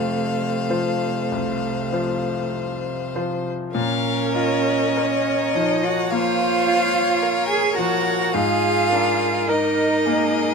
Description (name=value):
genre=classical, slow romantic movement for piano quintet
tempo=46-54 BPM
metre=4/4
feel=rubato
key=Bb minor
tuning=A4 = 440 Hz
part: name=rich violin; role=melody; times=0.0-10.5 s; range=Ab4 to F5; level=-27 LUFS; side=left 8 dB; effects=none
part: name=clear violin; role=second line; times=0.0-10.5 s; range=Db5 to Ab5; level=-26 LUFS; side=left 4 dB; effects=none
part: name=rich cello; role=second line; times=0.0-10.5 s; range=C3 to Ab4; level=-23 LUFS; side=right 7 dB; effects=none
part: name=bright grand piano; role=accompaniment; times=0.0-10.5 s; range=C2 to C5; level=-25 LUFS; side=left 4 dB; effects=none
part: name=warm viola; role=accompaniment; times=0.0-10.5 s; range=A3 to Db5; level=-28 LUFS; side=right 3 dB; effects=none
room=light reverb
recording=close, detailed microphones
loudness=-18 LUFS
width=side -5 dB against mid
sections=0.0-3.8 A section; 3.8-10.5 B section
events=none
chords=0.0 F; 3.8 Bbm; 8.3 Bb7/Ab